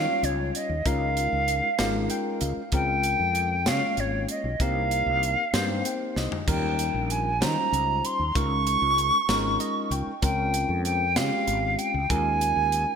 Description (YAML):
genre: electric jazz fusion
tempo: 64 BPM (dotted quarters)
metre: 6/8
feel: straight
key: Eb mixolydian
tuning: A4 = 440 Hz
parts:
  - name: silver concert flute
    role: melody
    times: 0.0-13.0 s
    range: Db5 to Db6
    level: -25 LUFS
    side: right 2 dB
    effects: none
  - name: bell-like tine electric piano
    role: accompaniment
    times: 0.0-12.9 s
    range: G3 to G5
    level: -30 LUFS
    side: left 3 dB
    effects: lush chorus
  - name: mellow fretless electric bass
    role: bass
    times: 0.0-12.8 s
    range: Ab1 to Eb3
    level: -29 LUFS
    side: equal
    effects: none
  - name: crisp fusion drum kit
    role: drums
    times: 0.2-12.9 s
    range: crash cymbal, hi-hat, kick drum, snare drum, toms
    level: -30 LUFS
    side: right 1 dB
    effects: gated reverb
room: moderate lush hall reverb, RT60 2.9 s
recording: bright 1980s-style digital production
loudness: -23 LUFS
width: side -6 dB against mid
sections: 0.0-13.0 A section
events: tine electric piano fill 1.8-2.7, 5.5-6.5, 9.3-10.2; drum fill 6.2-6.5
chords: 0.0 Eb9; 0.9 Db69; 2.7 Bbm9/Db; 4.6 Cm7; 6.5 Eb9; 8.3 Db69; 10.2 Bbm9/Db; 12.1 Eb9sus4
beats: | 0.85 1.79 | 2.73 3.66 | 4.60 5.54 | 6.47 7.41 | 8.35 9.29 | 10.22 11.16 | 12.10